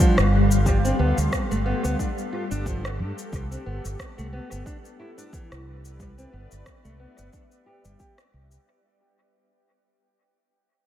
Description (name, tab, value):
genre	organic downtempo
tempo	90 BPM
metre	4/4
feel	swing 56% on 16ths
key	unclear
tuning	A4 = 445 Hz
part	granular cloud pad	sustained chords	0.0-8.7 s	G3 to C6	-28 LUFS	left 1 dB	built-in reverb, sidechain pumping
part	nylon-string guitar	arpeggios	0.0-8.2 s	E3 to G4	-30 LUFS	equal	low-pass filter, dub echo
part	electronic kick drum	drums	0.0-8.1 s	none	-24 LUFS	equal	none
part	electronic shaker and rim click	drums	0.0-8.6 s	none	-31 LUFS	equal	dub echo
part	mellow fretless electric bass	bass	0.2-8.6 s	G1 to G2	-24 LUFS	equal	sidechain pumping
room	light reverb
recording	echo-heavy mix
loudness	-21 LUFS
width	side -12 dB against mid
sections	0.0-8.7 A section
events	fade-out 0.0-8.7; filter sweep on fretless electric bass 0.0-8.7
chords	0.0 G7sus4; 3.3 Cmaj9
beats	| 0.66 1.33 1.99 2.66 | 3.33 3.99 4.66 5.33 | 5.99 6.66 7.33 7.99